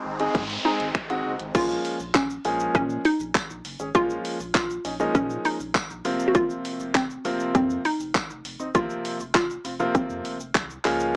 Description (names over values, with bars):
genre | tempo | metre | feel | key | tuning
dance-pop | 100 BPM | 4/4 | straight | Bb minor | A4 = 440 Hz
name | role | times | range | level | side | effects
filtered supersaw swell | sustained chords | 0.0-1.5 s | Ab3 to Eb4 | -38 LUFS | equal | sidechain pumping
sub bass with octave | bass | 0.0-11.2 s | Eb1 to Bb2 | -43 LUFS | equal | sidechain pumping
noise sweep | sound effects | 0.0-1.5 s | none | -36 LUFS | equal | none
bright grand piano | accompaniment | 0.2-11.2 s | C3 to Ab4 | -29 LUFS | equal | sidechain pumping
house drum kit | drums | 0.2-11.1 s | crash cymbal, finger snaps, handclaps, hi-hat, kick drum, shaker | -28 LUFS | equal | none
hollow square pluck | melody | 0.7-10.8 s | C4 to Gb4 | -28 LUFS | equal | chorus
tambourine | percussion | 2.1-10.7 s | none | -42 LUFS | equal | none
room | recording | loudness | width
light reverb | dry, gritty hardware recording, small speaker sound | -25 LUFS | mono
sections
0.0-1.5 A section; 1.5-11.2 B section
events
noise sweep 0.0-1.5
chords
0.0 Ab; 1.5 Bbm7; 6.0 Fsus4